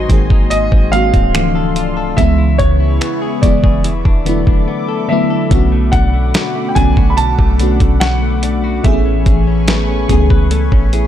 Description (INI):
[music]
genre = contemporary R&B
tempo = 72 BPM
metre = 4/4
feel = straight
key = unclear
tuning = A4 = 440 Hz
[part]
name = warm baby grand piano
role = melody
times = 0.0-9.6 s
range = C#5 to B5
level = -20 LUFS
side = equal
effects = none
[part]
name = FM electric piano with soft pad layer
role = accompaniment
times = 0.0-11.1 s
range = C#3 to G#4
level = -18 LUFS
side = equal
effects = chorus, phaser
[part]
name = lush unison pad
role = sustained chords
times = 0.0-11.1 s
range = A3 to D6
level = -25 LUFS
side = equal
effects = chorus, sidechain pumping
[part]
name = direct-recorded clean electric guitar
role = arpeggios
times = 0.0-11.1 s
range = G#2 to B4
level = -23 LUFS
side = left 8 dB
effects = ping-pong delay
[part]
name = soft 808-style bass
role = bass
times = 0.0-11.1 s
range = B#0 to C#2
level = -15 LUFS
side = equal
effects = none
[part]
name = dusty soul sampler-style drum kit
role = drums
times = 0.1-11.1 s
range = finger snaps, hi-hat, kick drum, snare drum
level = -14 LUFS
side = equal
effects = none
[sound]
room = little or no reverb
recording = dark, warm production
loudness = -11 LUFS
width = side -11 dB against mid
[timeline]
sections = 0.0-5.5 A section; 5.5-11.1 B section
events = silent gap 4.7-5.5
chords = 0.0 G#7; 1.3 Dm7; 2.2 C#m7; 3.8 E7sus4; 5.5 Bm7; 8.8 Amaj9